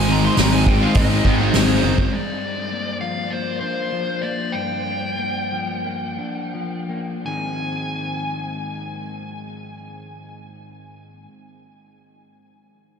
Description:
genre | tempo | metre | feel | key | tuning
post-rock | 81-103 BPM | 4/4 | straight | Ab lydian | A4 = 440 Hz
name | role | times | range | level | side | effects
dark smooth lead guitar | melody | 0.0-11.0 s | Bb4 to C6 | -26 LUFS | left 1 dB | overdrive, diffuse ambient delay
electric guitar at the edge of break-up | arpeggios | 0.0-11.3 s | G2 to Ab4 | -27 LUFS | left 3 dB | lush chorus, diffuse ambient delay
overdriven semi-hollow guitar | riff | 0.0-2.1 s | Ab2 to Eb4 | -26 LUFS | left 10 dB | analog chorus
thick fuzz guitar | riff | 0.0-2.1 s | Ab2 to Eb4 | -25 LUFS | right 10 dB | distortion
fuzz picked electric bass | bass | 0.0-2.1 s | Gb1 to Ab1 | -20 LUFS | right 1 dB | overdrive
soft-mallet drum kit | drums | 0.4-2.1 s | hi-hat, kick drum, snare drum | -20 LUFS | equal | none
room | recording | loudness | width
moderate huge ambient reverb, RT60 8.1 s | dreamy mix soaked in reverb | -19 LUFS | side -7 dB against mid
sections
0.0-2.1 A section; 2.1-7.2 B section; 7.2-10.2 C section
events
slowing down 2.1-7.2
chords
0.0 Ab; 2.1 Gm7; 7.2 Ab

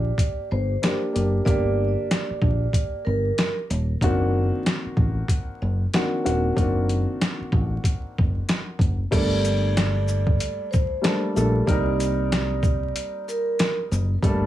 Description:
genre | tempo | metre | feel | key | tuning
hip hop, boom-bap hip-hop | 94 BPM | 4/4 | swing 61% on 16ths | G harmonic minor | A4 = 440 Hz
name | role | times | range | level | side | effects
vibraphone with soft mallets | melody | 0.0-3.5, 9.1-13.8 s | Bb4 to D5 | -28 LUFS | right 3 dB | high-pass filter, low-pass filter, digital delay
dark concert grand piano | accompaniment | 0.0-14.5 s | Eb3 to Bb4 | -27 LUFS | left 1 dB | high-pass filter, low-pass filter
fingered electric bass | bass | 0.0-14.5 s | Eb1 to C2 | -23 LUFS | equal | none
boom bap sampler-style drum kit | drums | 0.2-14.4 s | crash cymbal, hi-hat, kick drum, shaker, snare drum | -23 LUFS | equal | none
room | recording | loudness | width
light reverb | vinyl crackle, small room ambience | -20 LUFS | side -13 dB against mid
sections
0.0-9.1 A section; 9.1-14.5 B section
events
none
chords
0.0 Gm; 4.0 D7b9b13; 9.1 Gmadd9; 11.7 Cm7

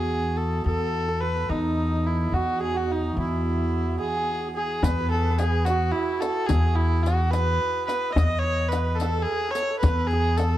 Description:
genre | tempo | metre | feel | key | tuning
Persian modal ensemble | 72 BPM (dotted quarters) | 6/8 | straight | E dastgah mahur | A4 = 441 Hz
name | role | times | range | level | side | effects
clear kamancheh | melody | 0.0-10.6 s | D#4 to D#5 | -27 LUFS | equal | none
santur | second line | 0.0-10.6 s | D#4 to E5 | -30 LUFS | right 6 dB | none
upright bass | bass | 0.0-10.6 s | E2 | -25 LUFS | equal | none
rich cello | drone | 0.0-4.9 s | E2 | -34 LUFS | equal | stereo widening
riq | percussion | 4.8-10.5 s | none | -36 LUFS | left 7 dB | none
tombak | percussion | 4.8-10.5 s | none | -26 LUFS | left 2 dB | none
room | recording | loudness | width
moderate spring reverb, RT60 1.0 s | none | -22 LUFS | side -13 dB against mid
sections
0.0-4.8 A section; 4.8-10.6 B section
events
none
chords
none

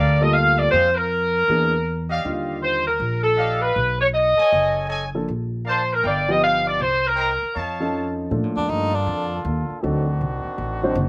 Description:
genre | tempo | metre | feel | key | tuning
jazz, big band swing | 158 BPM | 4/4 | swing 65% on 8ths | Bb major | A4 = 440 Hz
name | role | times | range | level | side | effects
clear saxophone section | melody | 0.0-7.6 s | A4 to F5 | -21 LUFS | equal | none
warm trumpet section | stabs | 0.0-8.1 s | G4 to Bb5 | -29 LUFS | equal | slapback echo
upright bass | bass | 0.0-11.1 s | F#1 to Bb2 | -28 LUFS | equal | none
warm grand piano | accompaniment | 0.2-2.8, 5.1-11.0 s | D3 to C5 | -28 LUFS | equal | none
brilliant trombone section | sustained chords | 8.3-11.1 s | Bb2 to A4 | -32 LUFS | equal | none
bright tenor saxophone | melody | 8.6-9.5 s | D4 to Eb4 | -26 LUFS | equal | none
room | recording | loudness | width
light reverb | recorded outdoors, with no room sound | -21 LUFS | mono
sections
0.0-8.3 A section; 8.3-11.1 B section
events
tenor saxophone solo 8.3-11.1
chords
0.0 Gm9; 0.7 Fm9; 1.5 E7#11; 2.2 Ebmaj9; 3.8 B13; 5.3 Bbmaj7; 6.0 G7b13; 6.8 Cm7; 7.6 Faug7; 8.3 Bbmaj7; 9.8 D7b9

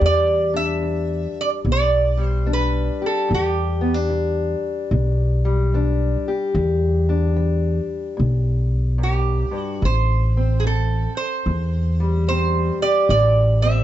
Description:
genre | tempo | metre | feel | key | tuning
acoustic country blues, solo or duo | 74 BPM | 4/4 | swing 64% on 8ths | E minor | A4 = 440 Hz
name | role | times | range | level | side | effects
lap resonator guitar | melody | 0.0-13.8 s | G4 to E5 | -22 LUFS | right 4 dB | slapback echo
fingerpicked steel-string acoustic guitar | accompaniment | 0.0-13.8 s | E2 to G4 | -25 LUFS | left 4 dB | none
upright bass | bass | 0.0-13.8 s | A1 to E2 | -19 LUFS | equal | none
room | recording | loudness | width
light reverb | dark, warm production, nothing above 7.8 kHz | -18 LUFS | side -12 dB against mid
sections
0.0-13.8 A section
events
none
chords
0.0 Em7; 9.8 Am7

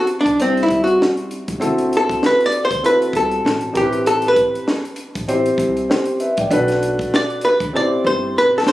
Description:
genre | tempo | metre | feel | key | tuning
hip hop, jazz-hop | 98 BPM | 4/4 | swing 58% on 16ths | A dorian | A4 = 439 Hz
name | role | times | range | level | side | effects
archtop guitar, miked and amplified | melody | 0.0-8.7 s | C4 to D5 | -16 LUFS | equal | none
dark baby grand piano | accompaniment | 0.0-8.7 s | G3 to G5 | -20 LUFS | equal | none
compact cocktail drum kit | drums | 0.1-8.7 s | hi-hat, kick drum, snare drum | -24 LUFS | equal | none
upright bass | bass | 0.3-8.7 s | E1 to D2 | -28 LUFS | equal | none
room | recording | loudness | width
light reverb, studio reverb | recorded on a phone in the room, studio ambience, compression | -15 LUFS | side -15 dB against mid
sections
0.0-8.7 A section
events
hollow-body jazz guitar solo 0.0-8.7; drum fill 7.7-8.7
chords
0.0 Am7 (rootless); 1.6 D7; 3.8 Am9; 6.5 Bm7; 7.7 Am7

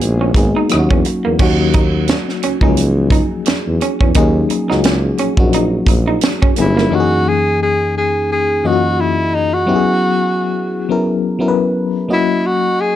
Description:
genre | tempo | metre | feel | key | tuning
R&B, neo-soul | 87 BPM | 4/4 | swing 55% on 16ths | unclear | A4 = 437 Hz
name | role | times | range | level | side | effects
breathy tenor saxophone | melody | 0.0-0.3, 6.6-13.0 s | D#4 to G#4 | -16 LUFS | equal | none
FM electric piano with auto-pan | accompaniment | 0.0-13.0 s | F#2 to D#5 | -17 LUFS | left 3 dB | none
warm tuba | bass | 0.0-6.9 s | G1 to E2 | -17 LUFS | equal | none
tight funk drum kit | drums | 0.0-6.9 s | crash cymbal, hi-hat, kick drum, rim click, snare drum | -15 LUFS | right 1 dB | none
electric guitar through a small old amp | second line | 0.2-6.9 s | A#3 to D#4 | -21 LUFS | right 6 dB | plate reverb
room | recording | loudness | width
light reverb | dark, warm production | -12 LUFS | side -12 dB against mid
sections
0.0-1.4 A section; 1.4-6.9 B section; 6.9-13.0 C section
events
none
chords
0.0 G#m9; 0.7 D#m7; 6.9 F#13; 9.7 E69; 12.1 D#m7

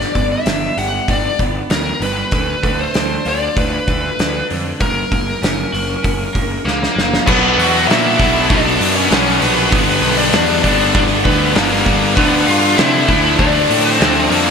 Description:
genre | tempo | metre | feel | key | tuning
quiet-loud alternative rock | 98 BPM | 4/4 | straight | unclear | A4 = 444 Hz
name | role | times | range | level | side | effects
bluesy overdriven lead guitar | melody | 0.0-14.5 s | A#3 to F#5 | -17 LUFS | left 1 dB | distortion, slapback echo
twelve-string electric guitar | arpeggios | 0.0-7.3 s | F#2 to G4 | -25 LUFS | right 3 dB | phaser, slapback echo
fuzz picked electric bass | bass | 0.0-14.5 s | F#1 to C3 | -21 LUFS | equal | overdrive
loose indie drum kit | drums | 0.0-14.4 s | crash cymbal, hi-hat, kick drum, snare drum | -18 LUFS | equal | none
distorted electric guitar | riff | 7.3-14.5 s | G2 to D4 | -18 LUFS | left 1 dB | distortion, slapback echo
fuzz guitar | riff | 7.3-14.5 s | G2 to D4 | -20 LUFS | left 9 dB | distortion, slapback echo
tight distorted guitar | riff | 7.3-14.5 s | G2 to D4 | -21 LUFS | right 10 dB | distortion, slapback echo
room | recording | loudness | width
moderate lush hall reverb, RT60 2.7 s | big arena sound | -12 LUFS | side -6 dB against mid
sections
0.0-7.3 A section; 7.3-14.5 B section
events
drum fill 6.7-7.3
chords
0.0 G; 2.3 Dm; 4.8 F#; 7.3 Bm; 9.7 G; 12.2 Dm

